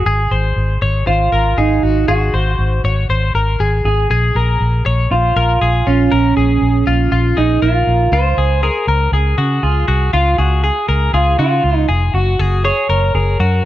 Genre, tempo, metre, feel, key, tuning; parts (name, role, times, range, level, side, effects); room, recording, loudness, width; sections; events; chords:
jangly indie pop; 119 BPM; 4/4; straight; Db major; A4 = 440 Hz
electric guitar through a small old amp; melody; 0.0-13.6 s; Db4 to Db5; -17 LUFS; right 3 dB; spring reverb
twelve-string electric guitar; arpeggios; 0.0-13.6 s; F4 to Db5; -19 LUFS; left 4 dB
vintage muted fingered electric bass; bass; 0.1-13.6 s; F1 to Db3; -15 LUFS; equal
little or no reverb; dark, warm production; -12 LUFS; side -13 dB against mid
0.0-8.1 A section; 8.1-13.7 B section
0.1 Ab7sus4; 4.1 Bbm7; 8.1 Db; 12.1 Gbadd9